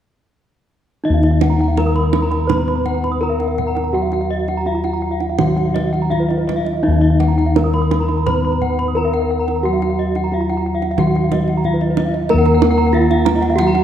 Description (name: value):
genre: Balinese gamelan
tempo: 83-93 BPM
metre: 4/4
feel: straight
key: Eb pelog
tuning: A4 = 444 Hz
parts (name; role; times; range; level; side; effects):
- gamelan-type bronze metallophone; melody; 1.0-13.8 s; Eb4 to Cb5; -20 LUFS; right 1 dB; slapback echo
- gamelan-type bronze metallophone; accompaniment; 1.0-13.8 s; Eb3 to Cb4; -23 LUFS; left 1 dB; none
- gamelan-type bronze metallophone; arpeggios; 1.1-13.7 s; Eb5 to Cb6; -25 LUFS; left 4 dB; none
- gamelan-type bronze metallophone; arpeggios; 1.1-13.8 s; Cb5 to Eb6; -26 LUFS; right 5 dB; none
- gamelan-type bossed gongs; bass; 1.1-13.8 s; Eb2 to Bb4; -18 LUFS; left 1 dB; none
- kendang; percussion; 1.2-13.8 s; none; -23 LUFS; right 7 dB; none
room: moderate concert hall reverb, RT60 2.2 s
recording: none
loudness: -14 LUFS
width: side -10 dB against mid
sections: 1.0-12.3 A section; 12.3-13.8 B section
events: none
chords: none